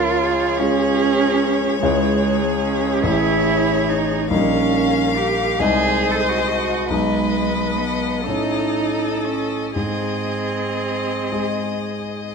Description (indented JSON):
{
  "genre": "classical, slow romantic movement for piano quartet",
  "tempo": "38-51 BPM (dotted quarters)",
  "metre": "6/8",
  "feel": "rubato",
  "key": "unclear",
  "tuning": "A4 = 438 Hz",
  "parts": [
    { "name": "clear violin", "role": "melody", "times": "0.0-12.3 s", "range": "C#5 to E#5", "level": "-25 LUFS", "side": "left 9 dB", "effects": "none" },
    { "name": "dark cello", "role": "second line", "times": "0.0-12.3 s", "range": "G#3 to A4", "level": "-21 LUFS", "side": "right 6 dB", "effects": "none" },
    { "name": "warm concert grand piano", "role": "accompaniment", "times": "0.0-12.3 s", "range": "A1 to D#5", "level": "-22 LUFS", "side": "left 3 dB", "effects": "none" },
    { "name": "warm viola", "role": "accompaniment", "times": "0.0-12.3 s", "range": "Ab4 to B#4", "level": "-26 LUFS", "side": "right 3 dB", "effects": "none" }
  ],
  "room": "moderate scoring stage reverb, RT60 1.5 s",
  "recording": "none",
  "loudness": "-17 LUFS",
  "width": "side -5 dB against mid",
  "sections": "0.0-12.3 A section",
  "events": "none",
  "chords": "0.0 Db; 1.8 C#m; 3.1 A; 4.3 D#7/A#; 5.6 G#/B#; 6.9 G#m/B; 8.3 A; 9.8 G#"
}